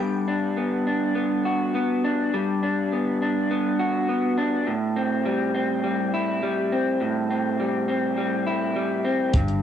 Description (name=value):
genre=indie pop, bedroom pop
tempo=103 BPM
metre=4/4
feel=straight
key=G major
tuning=A4 = 440 Hz
part: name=electric guitar through a small old amp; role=accompaniment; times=0.0-9.6 s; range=G2 to F#4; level=-22 LUFS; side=equal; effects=wide subtle chorus, vibrato effect, cassette tape
part: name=vintage muted fingered electric bass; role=bass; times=9.3-9.6 s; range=G1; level=-25 LUFS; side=equal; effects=none
part: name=compact cocktail drum kit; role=drums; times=9.3-9.6 s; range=hi-hat, kick drum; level=-21 LUFS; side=equal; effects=vintage 12-bit sampler grit, cassette tape
room=light reverb, studio reverb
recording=home recording on cassette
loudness=-22 LUFS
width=side -9 dB against mid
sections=0.0-9.6 A section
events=none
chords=0.0 Gmaj7; 4.7 Am7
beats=0.57 1.16 1.74 | 2.33 2.91 3.50 4.08 | 4.67 5.25 5.83 6.42 | 7.00 7.59 8.17 8.76 | 9.34